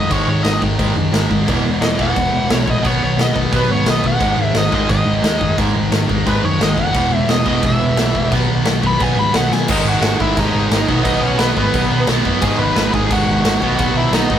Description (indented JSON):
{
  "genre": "punk rock",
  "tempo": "175 BPM",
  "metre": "4/4",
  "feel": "straight",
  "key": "G# minor",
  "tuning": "A4 = 440 Hz",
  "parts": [
    { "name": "smooth overdriven lead guitar", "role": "melody", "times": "0.0-14.4 s", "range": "B3 to B5", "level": "-20 LUFS", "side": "equal", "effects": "none" },
    { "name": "cranked stack guitar", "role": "riff", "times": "0.0-14.4 s", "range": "E2 to B3", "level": "-22 LUFS", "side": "right 6 dB", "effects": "overdrive" },
    { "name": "sludgy distorted guitar", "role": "riff", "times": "0.0-14.4 s", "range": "G#2 to D#4", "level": "-23 LUFS", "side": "left 6 dB", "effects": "overdrive" },
    { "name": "tight distorted guitar", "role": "riff", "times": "0.0-14.4 s", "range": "E2 to B3", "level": "-21 LUFS", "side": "equal", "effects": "distortion" },
    { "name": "overdriven picked electric bass", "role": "bass", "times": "0.0-14.4 s", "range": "E1 to B2", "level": "-21 LUFS", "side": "equal", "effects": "none" },
    { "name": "big rock drum kit", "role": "drums", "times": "0.1-14.4 s", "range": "crash cymbal, kick drum, snare drum", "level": "-20 LUFS", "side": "equal", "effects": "none" }
  ],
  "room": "light reverb",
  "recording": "rough rehearsal-room recording",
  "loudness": "-13 LUFS",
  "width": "side -10 dB against mid",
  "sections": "0.0-9.7 A section; 9.7-14.4 B section",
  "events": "lead electric guitar solo 0.0-9.7; drum fill 9.5",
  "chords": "0.0 G#5; 1.5 E; 2.8 B; 4.2 G#5; 6.9 E; 8.3 B; 9.7 G#m; 10.9 B; 12.4 G#m; 13.6 B"
}